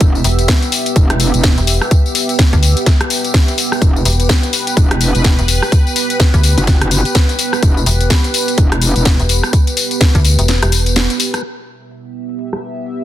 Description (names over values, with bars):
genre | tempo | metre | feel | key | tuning
bass house | 126 BPM | 4/4 | swing 60% on 16ths | E minor | A4 = 439 Hz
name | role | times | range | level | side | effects
sweeping resonant pad | sustained chords | 0.0-13.0 s | B3 to E5 | -21 LUFS | right 2 dB | chorus, sidechain pumping
metallic wobble bass | bass | 0.0-9.2 s | E1 to F#1 | -15 LUFS | equal | chorus, tube saturation, sidechain pumping
electronic kick drum | drums | 0.0-10.2 s | none | -12 LUFS | equal | none
house drum kit | drums | 0.0-13.0 s | hi-hat, rim click, snare drum, tambourine | -16 LUFS | left 2 dB | low-pass filter on hats, low-pass filter on perc, low-pass filter on snare, low-pass filter on room
metallic FM bass | bass | 0.2-11.1 s | E1 to D2 | -13 LUFS | equal | overdrive, sidechain pumping
room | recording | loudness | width
digital ambience | dense, heavily limited modern master | -11 LUFS | side -13 dB against mid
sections
0.0-11.4 A section; 11.4-13.0 B section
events
drop 0.0-11.4; kick drops out 10.5-11.4; filter sweep on analog synth pad 11.4-13.0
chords
0.0 Em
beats
| 0.01 0.48 0.96 1.44 | 1.91 2.39 2.86 3.34 | 3.82 4.29 4.77 5.24 | 5.72 6.20 6.67 7.15 | 7.62 8.10 8.58 9.05 | 9.53 10.01 10.48 10.96 | 11.44 11.91 12.39 12.86